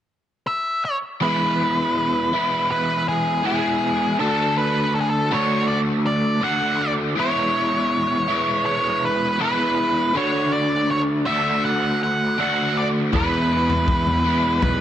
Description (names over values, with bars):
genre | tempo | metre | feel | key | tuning
psychedelic rock | 80 BPM | 4/4 | straight | unclear | A4 = 440 Hz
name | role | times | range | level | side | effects
octave-fuzz lead guitar | melody | 0.5-14.8 s | G#4 to F#5 | -22 LUFS | equal | distortion, tape echo
overdriven electric guitar | riff | 1.2-14.8 s | D3 to F#4 | -21 LUFS | equal | rotary speaker
fuzz picked electric bass | bass | 13.1-14.8 s | B1 to E2 | -23 LUFS | equal | overdrive
vintage drum kit | drums | 13.1-14.8 s | kick drum, toms | -24 LUFS | left 1 dB | none
room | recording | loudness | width
moderate spring reverb, RT60 2.4 s | 1960s-style stereo | -18 LUFS | side -10 dB against mid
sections
0.0-1.2 A section; 1.2-14.8 B section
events
none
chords
0.0 N.C.; 1.2 E; 4.2 D; 7.2 E; 10.2 D; 13.1 E